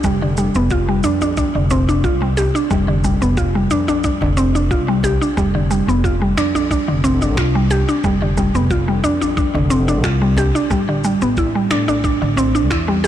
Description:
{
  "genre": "organic downtempo",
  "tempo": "90 BPM",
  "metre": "4/4",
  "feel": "straight",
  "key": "unclear",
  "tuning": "A4 = 440 Hz",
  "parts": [
    { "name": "mallet-like synth pluck", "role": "arpeggios", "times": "0.0-13.1 s", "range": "D3 to G4", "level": "-17 LUFS", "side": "equal", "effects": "chorus, digital delay" },
    { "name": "upright bass", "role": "bass", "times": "0.0-13.1 s", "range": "F1 to A2", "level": "-19 LUFS", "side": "equal", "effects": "sidechain pumping" },
    { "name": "electronic kick drum", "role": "drums", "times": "0.0-12.8 s", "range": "none", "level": "-23 LUFS", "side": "equal", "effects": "studio reverb" },
    { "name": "electronic shaker and finger snaps", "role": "drums", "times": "0.0-13.1 s", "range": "none", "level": "-29 LUFS", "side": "equal", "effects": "studio reverb, soft clipping on snare" },
    { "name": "djembe", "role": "percussion", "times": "0.0-13.1 s", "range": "none", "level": "-28 LUFS", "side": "right 1 dB", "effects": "none" }
  ],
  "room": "light reverb, digital ambience",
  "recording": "blown-out, overdriven recording, overdrive",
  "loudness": "-14 LUFS",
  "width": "side -11 dB against mid",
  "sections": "0.0-13.1 A section",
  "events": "none",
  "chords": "0.0 F5; 10.7 Am7",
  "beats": "| 0.04 0.71 1.37 2.04 | 2.71 3.37 4.04 4.71 | 5.37 6.04 6.71 7.37 | 8.04 8.71 9.37 10.04 | 10.71 11.37 12.04 12.71"
}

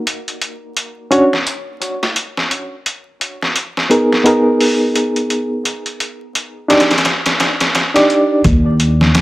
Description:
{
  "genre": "trip hop",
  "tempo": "86 BPM",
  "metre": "4/4",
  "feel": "swing 60% on 16ths",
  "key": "unclear",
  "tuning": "A4 = 441 Hz",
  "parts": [
    { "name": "reed electric piano", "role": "accompaniment", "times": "0.0-8.4 s", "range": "Cb4 to D5", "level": "-15 LUFS", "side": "equal", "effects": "tremolo, vintage 12-bit sampler grit, tape echo" },
    { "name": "trip hop sampler-style drum kit", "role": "drums", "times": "0.1-9.2 s", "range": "hi-hat, kick drum, snare drum", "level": "-16 LUFS", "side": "equal", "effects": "high-pass filter on hats, studio reverb, high-pass filter on snare, high-pass filter on kick" },
    { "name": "upright bass", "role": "bass", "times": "8.4-9.2 s", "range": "Eb2", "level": "-12 LUFS", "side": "equal", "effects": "none" }
  ],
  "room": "light reverb",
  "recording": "vinyl crackle",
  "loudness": "-13 LUFS",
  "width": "side -18 dB against mid",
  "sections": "0.0-8.4 A section",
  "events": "none",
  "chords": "0.1 Dbsus4; 2.9 Abmadd9; 5.7 Ebmaj7/D; 8.4 N.C.",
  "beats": "| 0.07 0.77 1.47 2.16 | 2.86 3.56 4.26 4.96 | 5.65 6.35 7.05 7.75 | 8.44 9.14"
}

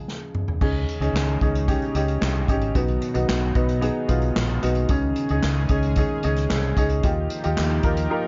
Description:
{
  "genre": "piano-driven pop",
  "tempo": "112 BPM",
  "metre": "4/4",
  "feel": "straight",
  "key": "unclear",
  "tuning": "A4 = 441 Hz",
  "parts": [
    { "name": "warm upright piano", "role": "accompaniment", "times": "0.0-8.3 s", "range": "B2 to Bb4", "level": "-27 LUFS", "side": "equal", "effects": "none" },
    { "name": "unplugged drum kit", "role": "drums", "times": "0.1-8.1 s", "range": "crash cymbal, handclaps, hi-hat, kick drum, snare drum, toms", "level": "-28 LUFS", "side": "equal", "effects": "none" },
    { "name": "chorused pulse-width pad", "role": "sustained chords", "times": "0.9-8.3 s", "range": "Eb3 to Ab4", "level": "-35 LUFS", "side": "equal", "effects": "none" },
    { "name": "fingered electric bass", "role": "bass", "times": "0.6-8.1 s", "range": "Ab1 to Eb2", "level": "-26 LUFS", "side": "equal", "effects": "none" }
  ],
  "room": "little or no reverb",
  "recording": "dark, warm production, nothing above 7.5 kHz",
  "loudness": "-23 LUFS",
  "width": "mono",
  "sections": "0.6-8.3 A section",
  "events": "drum fill 0.1-0.6",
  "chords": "0.0 Db; 0.6 Dbsus2; 2.8 B; 4.9 Dbsus2; 7.0 Ebadd9",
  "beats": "0.08 | 0.61 1.15 1.68 2.22 | 2.76 3.29 3.83 4.36 | 4.90 5.43 5.97 6.50 | 7.04 7.57 8.11"
}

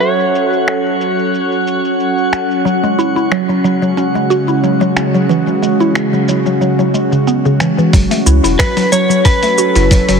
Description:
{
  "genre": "organic downtempo",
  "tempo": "91 BPM",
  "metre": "4/4",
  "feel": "swing 54% on 16ths",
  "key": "F# minor",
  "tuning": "A4 = 440 Hz",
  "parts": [
    { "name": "electric slide guitar", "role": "melody", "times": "0.0-2.3, 8.6-10.2 s", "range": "B4 to C#5", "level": "-16 LUFS", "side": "equal", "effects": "ping-pong delay" },
    { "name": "bowed-like drone", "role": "sustained chords", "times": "0.0-10.2 s", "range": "C#3 to A4", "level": "-16 LUFS", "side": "right 1 dB", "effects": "built-in reverb, sidechain pumping" },
    { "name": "dusty soul sampler-style drum kit", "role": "drums", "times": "0.0-10.2 s", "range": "finger snaps, hi-hat, shaker", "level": "-21 LUFS", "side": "equal", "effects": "low-pass filter on perc, low-pass filter on snare, low-pass filter on hats" },
    { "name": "drifting glass-harmonics texture", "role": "texture", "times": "0.0-7.9 s", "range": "F#4 to F#5", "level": "-21 LUFS", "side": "right 2 dB", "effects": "chorus, built-in reverb" },
    { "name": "mallet-like synth pluck", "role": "arpeggios", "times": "2.7-10.2 s", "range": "C#3 to F#4", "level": "-14 LUFS", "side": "equal", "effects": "chorus, phaser, ping-pong delay" },
    { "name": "round analog bass", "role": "bass", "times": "7.9-10.2 s", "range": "E1 to C#2", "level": "-13 LUFS", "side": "equal", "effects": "sidechain pumping" },
    { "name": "electronic kick drum", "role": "drums", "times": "7.9-10.1 s", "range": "none", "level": "-12 LUFS", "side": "equal", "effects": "none" }
  ],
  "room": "moderate lush hall reverb, RT60 2.8 s",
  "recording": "heavily compressed radio sound",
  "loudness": "-11 LUFS",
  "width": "side -6 dB against mid",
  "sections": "0.0-7.9 A section; 7.9-10.2 B section",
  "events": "none",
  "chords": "0.0 F#m; 2.7 C#sus4; 7.9 F#m7",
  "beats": "| 0.02 0.68 1.34 2.00 | 2.65 3.31 3.97 4.63 | 5.29 5.95 6.61 7.27 | 7.93 8.59 9.25 9.91"
}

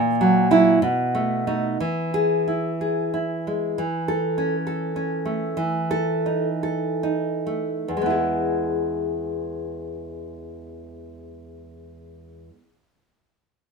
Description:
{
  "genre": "romantic piece for solo classical guitar",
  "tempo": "45-69 BPM",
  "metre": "2/4",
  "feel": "rubato",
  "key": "E major",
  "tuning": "A4 = 441 Hz",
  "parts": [
    { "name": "nylon-string guitar", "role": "solo", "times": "0.0-12.7 s", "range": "E2 to A4", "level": "-21 LUFS", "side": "right 1 dB", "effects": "none" }
  ],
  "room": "light reverb",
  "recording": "minimal, uncompressed stereo recording",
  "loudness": "-21 LUFS",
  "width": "side -5 dB against mid",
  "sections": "0.0-3.8 A section; 3.8-7.9 B section; 7.9-12.8 C section",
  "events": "slowing down 2.8-7.9",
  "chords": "0.0 F#7/A#; 0.8 B7; 1.8 E; 3.8 A/E; 5.6 Esus4; 7.9 E",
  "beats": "0.81 | 1.79 2.80 | 3.77 4.67 | 5.57 6.63 | 7.89 9.10 | 10.35 11.61"
}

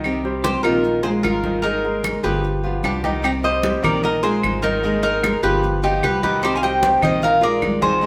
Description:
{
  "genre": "latin, Cuban son and guajira",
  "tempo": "150 BPM",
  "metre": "4/4",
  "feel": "straight",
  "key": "C minor",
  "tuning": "A4 = 440 Hz",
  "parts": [
    { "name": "nylon-string guitar", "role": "accompaniment", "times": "0.0-8.1 s", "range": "C3 to Ab4", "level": "-28 LUFS", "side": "equal", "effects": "none" },
    { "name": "bright concert grand piano", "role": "arpeggios", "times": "0.0-8.1 s", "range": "Eb3 to Eb5", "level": "-28 LUFS", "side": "equal", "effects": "none" },
    { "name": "upright bass", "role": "bass", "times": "0.0-8.1 s", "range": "G1 to C2", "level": "-30 LUFS", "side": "equal", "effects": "none" },
    { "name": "claves", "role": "percussion", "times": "0.0-7.8 s", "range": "none", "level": "-29 LUFS", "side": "equal", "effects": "none" },
    { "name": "congas", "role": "percussion", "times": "0.1-8.1 s", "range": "none", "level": "-30 LUFS", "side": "equal", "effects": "none" },
    { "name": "Cuban tres", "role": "melody", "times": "0.4-8.1 s", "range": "G4 to Ab5", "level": "-23 LUFS", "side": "equal", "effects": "none" },
    { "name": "archtop guitar, miked and amplified", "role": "second line", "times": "0.4-8.1 s", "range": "D4 to F5", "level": "-26 LUFS", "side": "equal", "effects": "none" }
  ],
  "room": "wet stone room reverb, RT60 1.2 s",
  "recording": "band playing live in one room",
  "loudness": "-19 LUFS",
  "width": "mono",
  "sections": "0.0-3.2 A section; 3.2-8.1 B section",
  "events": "none",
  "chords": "0.0 Cm; 0.8 Bb7sus4; 1.6 Absus2; 2.4 G7; 3.2 Cm; 4.0 Bb7sus4; 4.8 Absus2; 5.6 G7; 6.4 Cm; 7.2 Bb7sus4",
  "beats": "| 0.04 0.45 0.84 1.25 | 1.64 2.04 2.44 2.84 | 3.24 3.64 4.04 4.44 | 4.84 5.24 5.63 6.03 | 6.43 6.83 7.23 7.63 | 8.02"
}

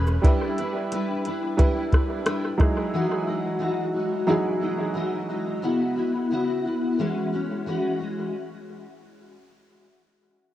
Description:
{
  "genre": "indie pop, bedroom pop",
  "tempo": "89 BPM",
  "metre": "4/4",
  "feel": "straight",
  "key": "E major",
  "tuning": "A4 = 440 Hz",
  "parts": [
    { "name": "picked steel-string acoustic guitar", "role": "accompaniment", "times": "0.0-8.3 s", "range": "C#3 to B4", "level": "-26 LUFS", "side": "left 2 dB", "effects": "ensemble chorus, warbly pitch drift, analog delay" },
    { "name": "warm upright piano", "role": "accompaniment", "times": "0.0-5.7 s", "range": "F#3 to B4", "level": "-28 LUFS", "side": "right 3 dB", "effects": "analog delay" },
    { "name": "soft vintage rhythm box", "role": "drums", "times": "0.1-2.8 s", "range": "hi-hat, kick drum, rim click, shaker", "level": "-22 LUFS", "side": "equal", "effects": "analog delay" }
  ],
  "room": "light reverb",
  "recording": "echo-heavy mix, cassette tape",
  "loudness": "-22 LUFS",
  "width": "side -13 dB against mid",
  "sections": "0.0-8.3 A section",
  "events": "none",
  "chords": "0.2 G6; 2.6 Emaj9; 5.6 C#m7; 7.0 E69",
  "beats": "| 0.24 0.91 1.59 2.26 | 2.93 3.61 4.28 4.96 | 5.63 6.30 6.98 7.65"
}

